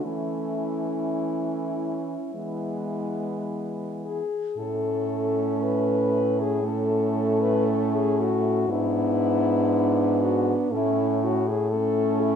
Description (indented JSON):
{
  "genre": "classical, lyrical piece for horn quartet",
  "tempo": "52-62 BPM",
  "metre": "4/4",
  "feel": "rubato",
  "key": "A major",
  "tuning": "A4 = 439 Hz",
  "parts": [
    { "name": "warm French horn", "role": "melody", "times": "0.0-12.4 s", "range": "E4 to B4", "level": "-27 LUFS", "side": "left 5 dB", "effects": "none" },
    { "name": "mellow French horn", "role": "accompaniment", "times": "0.0-12.4 s", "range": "G#3 to B3", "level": "-28 LUFS", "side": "left 4 dB", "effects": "none" },
    { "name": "warm French horn", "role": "bass", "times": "0.0-12.4 s", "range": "G#2 to E3", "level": "-30 LUFS", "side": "right 2 dB", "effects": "none" },
    { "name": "warm French horn", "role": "second line", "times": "0.1-12.4 s", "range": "B3 to D4", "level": "-28 LUFS", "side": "right 9 dB", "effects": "none" }
  ],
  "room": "moderate recital hall reverb, RT60 1.4 s",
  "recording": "minimal, uncompressed stereo recording",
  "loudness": "-22 LUFS",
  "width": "side -7 dB against mid",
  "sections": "0.0-4.6 A section; 4.6-12.4 B section",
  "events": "none",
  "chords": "0.0 Esus4; 2.3 E; 4.6 A; 8.7 E7/G#; 10.7 A"
}